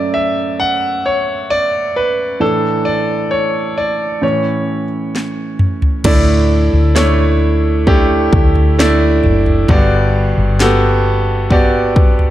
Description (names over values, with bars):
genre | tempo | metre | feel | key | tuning
pop ballad | 66 BPM | 4/4 | straight | D major | A4 = 441 Hz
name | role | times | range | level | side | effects
clear concert grand piano | accompaniment | 0.0-12.3 s | F#2 to F#5 | -14 LUFS | right 1 dB | none
house drum kit | drums | 5.2-12.3 s | crash cymbal, kick drum, snare drum, toms | -14 LUFS | equal | overdrive
woody fretless electric bass | bass | 6.0-12.3 s | F#1 to D2 | -15 LUFS | left 1 dB | none
room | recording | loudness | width
light reverb | dark, warm production | -11 LUFS | side -13 dB against mid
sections
0.0-6.0 A section; 6.0-12.3 B section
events
grand piano solo 0.0-6.0; drum fill 5.1-6.0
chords
0.0 F#m7; 2.4 Asus4; 4.2 A; 6.0 Dsus2; 9.7 Gmaj7